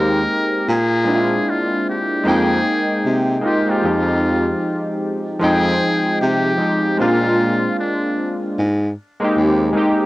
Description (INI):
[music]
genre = lo-fi hip hop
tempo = 76 BPM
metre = 4/4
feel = swing 62% on 16ths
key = F dorian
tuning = A4 = 439 Hz
[part]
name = trumpet with metal mute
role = melody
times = 0.0-8.4 s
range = D4 to Bb4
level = -22 LUFS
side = left 2 dB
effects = low-pass filter
[part]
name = warm analog keys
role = accompaniment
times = 0.0-10.1 s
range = F3 to G5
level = -18 LUFS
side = equal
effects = chorus, low-pass filter
[part]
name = breathy baritone saxophone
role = bass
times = 0.0-9.7 s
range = Eb2 to C3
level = -18 LUFS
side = equal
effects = none
[sound]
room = wet studio reverb, RT60 0.5 s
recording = worn, warbling old tape, cassette tape, warbly pitch drift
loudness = -16 LUFS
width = side -18 dB against mid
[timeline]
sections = 0.0-5.4 A section; 5.4-10.1 B section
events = none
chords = 0.0 Abmaj9; 0.7 Bb9; 2.3 Fm11; 3.8 Fm9; 7.0 Bb7; 8.6 Abmaj9